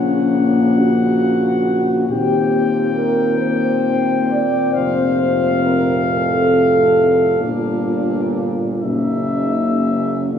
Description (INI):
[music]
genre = classical, hymn-like piece for brass band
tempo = 38-47 BPM (dotted quarters)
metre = 6/8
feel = rubato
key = unclear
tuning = A4 = 440 Hz
[part]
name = clear cornet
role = melody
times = 0.0-10.4 s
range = Fb5 to G5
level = -24 LUFS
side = left 2 dB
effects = none
[part]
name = mellow French horn section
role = second line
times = 0.0-10.4 s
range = Db4 to D5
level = -19 LUFS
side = right 1 dB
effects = none
[part]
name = bright trombone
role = accompaniment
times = 0.0-10.4 s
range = A2 to D3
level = -26 LUFS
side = equal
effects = none
[part]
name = warm trombone section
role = accompaniment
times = 0.0-10.4 s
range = Bb3 to C4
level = -23 LUFS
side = left 4 dB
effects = none
[part]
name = clear tuba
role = bass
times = 0.0-10.4 s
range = F1 to Eb2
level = -19 LUFS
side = left 2 dB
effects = none
[sound]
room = wet recital hall reverb, RT60 1.5 s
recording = recorded in a church or concert hall, small room ambience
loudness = -14 LUFS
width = side -8 dB against mid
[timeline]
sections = 0.0-10.4 A section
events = none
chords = 0.0 Gb/Bb; 2.1 Cm7/Eb; 4.7 F; 7.4 Gm7; 8.8 Gb7